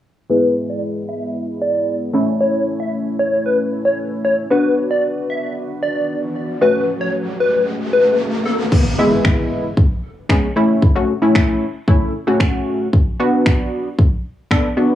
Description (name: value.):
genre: dance-pop.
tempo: 114 BPM.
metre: 4/4.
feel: straight.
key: unclear.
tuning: A4 = 440 Hz.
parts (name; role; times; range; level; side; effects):
plucky unison lead; melody; 0.3-8.6 s; A4 to E5; -18 LUFS; left 1 dB; low-pass filter, cassette tape, tape echo.
funky polysynth comp; accompaniment; 0.3-14.9 s; G#3 to A4; -18 LUFS; equal; chorus, sidechain pumping, low-pass filter.
riser and impact; sound effects; 6.2-10.8 s; none; -25 LUFS; left 1 dB; none.
pop drum kit; drums; 8.7-14.6 s; crash cymbal, finger snaps, kick drum; -15 LUFS; equal; none.
room: moderate spring reverb, RT60 1.3 s, digital ambience.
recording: home recording on cassette, small room ambience.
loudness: -15 LUFS.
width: side -12 dB against mid.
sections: 0.3-8.7 A section; 8.7-14.9 B section.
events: filter sweep 0.3-8.7; riser 6.2-8.7; impact 8.7-10.8.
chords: 0.3 E; 2.1 A; 4.5 Bm; 6.6 F#m; 8.7 E; 10.6 A; 12.9 Bm.